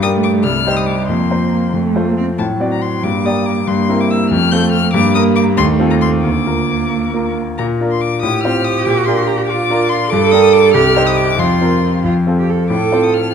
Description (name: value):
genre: quick classical-period movement for piano trio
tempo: 93 BPM (dotted quarters)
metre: 6/8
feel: rubato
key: Bb major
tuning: A4 = 440 Hz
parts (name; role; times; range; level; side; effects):
- warm violin; melody; 0.0-13.3 s; A5 to G6; -20 LUFS; left 7 dB; none
- clear concert grand piano; accompaniment; 0.0-13.3 s; C2 to D5; -15 LUFS; left 2 dB; none
- rich cello; second line; 0.1-13.3 s; F#3 to A4; -16 LUFS; right 7 dB; none
room: wet recital hall reverb, RT60 1.7 s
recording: dark, warm production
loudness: -12 LUFS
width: side -7 dB against mid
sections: 0.0-7.6 A section; 7.6-13.3 A section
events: none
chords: 0.4 Cm; 1.1 Fsus4; 1.7 F; 2.4 D7/A; 3.0 Gm; 3.7 C7/G; 4.3 F; 4.9 Gm; 5.6 F7/Eb; 6.2 Bb/D; 7.6 Bb; 8.2 F/A; 8.9 Bb; 10.1 Gm; 10.7 Cm; 11.4 Fsus4; 12.0 F; 12.7 F/A